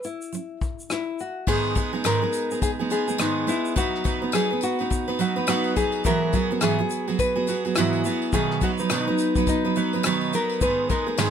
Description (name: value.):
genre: acoustic pop.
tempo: 105 BPM.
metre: 4/4.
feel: swing 60% on 16ths.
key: B major.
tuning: A4 = 441 Hz.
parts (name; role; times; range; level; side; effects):
nylon-string guitar; melody; 0.0-11.3 s; D#4 to B4; -26 LUFS; left 4 dB; none.
vintage brush drum kit; drums; 0.0-11.3 s; crash cymbal, kick drum, rim click, shaker, snare drum; -28 LUFS; left 3 dB; none.
picked steel-string acoustic guitar; accompaniment; 0.3-11.3 s; G#2 to B4; -24 LUFS; right 5 dB; none.
tambourine; percussion; 1.5-11.3 s; none; -37 LUFS; left 8 dB; none.
room: light reverb.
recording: none.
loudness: -21 LUFS.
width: side -8 dB against mid.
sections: 0.0-1.5 A section; 1.5-11.3 B section.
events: none.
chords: 0.3 F#5; 1.5 G#m; 3.8 B/F#; 6.0 Eadd9/G#; 8.3 B; 10.6 G#m.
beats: 0.32 0.90 | 1.47 2.04 2.62 3.19 | 3.76 4.33 4.91 5.48 | 6.05 6.62 7.19 7.76 | 8.34 8.91 9.48 10.05 | 10.62 11.19.